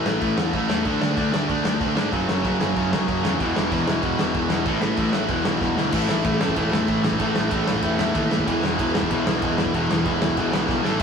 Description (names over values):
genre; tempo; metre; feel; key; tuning
punk rock; 189 BPM; 4/4; straight; unclear; A4 = 440 Hz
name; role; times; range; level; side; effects
biting overdriven guitar; riff; 0.0-11.0 s; E2 to D4; -25 LUFS; left 6 dB; none
distorted electric guitar; riff; 0.0-11.0 s; E2 to D4; -27 LUFS; right 8 dB; overdrive
overdriven semi-hollow guitar; riff; 0.0-11.0 s; E2 to D4; -26 LUFS; right 1 dB; none
fuzz picked electric bass; bass; 0.0-11.0 s; E1 to A2; -30 LUFS; equal; overdrive
loose indie drum kit; drums; 0.1-11.0 s; crash cymbal, kick drum, ride cymbal, snare drum; -26 LUFS; right 1 dB; none
room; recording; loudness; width
moderate stone room reverb, RT60 1.0 s; rough rehearsal-room recording; -19 LUFS; side -6 dB against mid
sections
0.0-5.9 A section; 5.9-11.0 B section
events
drum fill 5.6-5.9, 10.7-11.0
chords
0.0 A5; 0.9 D5; 2.1 F#5; 3.4 E5; 4.7 A5; 5.3 E5; 5.9 A5; 8.5 E5